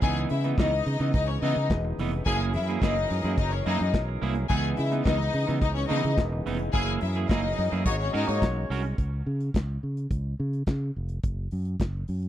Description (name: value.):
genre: disco.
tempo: 107 BPM.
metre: 4/4.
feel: straight.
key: C# dorian.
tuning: A4 = 440 Hz.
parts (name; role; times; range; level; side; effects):
rich studio string section; second line; 0.0-8.4 s; C#4 to G#5; -30 LUFS; left 5 dB; none.
electric guitar at the edge of break-up; accompaniment; 0.0-8.9 s; E3 to A#4; -32 LUFS; right 8 dB; spring reverb.
bright tonewheel organ; sustained chords; 0.0-9.0 s; C#3 to A#4; -35 LUFS; equal; overdrive, slow rotary speaker.
fingered electric bass; bass; 0.0-12.3 s; E1 to C#3; -28 LUFS; equal; none.
modern studio drum kit; drums; 0.0-12.3 s; handclaps, hi-hat, kick drum, snare drum; -26 LUFS; equal; none.
clear horn section; stabs; 7.9-8.7 s; A#3 to C#5; -31 LUFS; left 2 dB; slapback echo.
room: little or no reverb.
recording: dry, close 1970s-style studio recording.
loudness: -24 LUFS.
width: side -12 dB against mid.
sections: 0.0-9.0 A section; 9.0-12.3 B section.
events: band accent 6.7-9.0.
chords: 0.0 C#m9; 2.3 F#9; 4.5 C#m9; 6.7 F#9; 7.9 G#9sus4; 9.0 N.C..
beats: | 0.02 0.58 1.14 1.70 | 2.26 2.82 3.38 3.94 | 4.50 5.06 5.62 6.18 | 6.74 7.30 7.86 8.42 | 8.98 9.55 10.11 10.67 | 11.24 11.80.